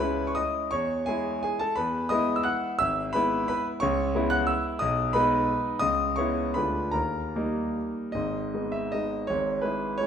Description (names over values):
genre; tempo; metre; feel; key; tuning
classical, romantic triple-time dance for piano with dotted rhythms; 143-197 BPM; 3/4; rubato; G# minor from 3.8 s; A4 = 439 Hz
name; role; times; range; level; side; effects
warm concert grand piano; solo; 0.0-10.1 s; G#1 to F#6; -24 LUFS; equal; none
room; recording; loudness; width
wet recital hall reverb, RT60 1.5 s; minimal, uncompressed stereo recording; -24 LUFS; side -8 dB against mid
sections
0.0-8.2 A section; 8.2-10.1 B section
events
none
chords
0.0 C#m; 0.7 C#m/E; 1.8 E; 2.8 E/G#; 3.8 C#m7; 4.8 G#m/B; 5.8 C#m7; 6.6 Ddim7; 6.9 D#; 8.2 G#m; 9.3 C#m/G#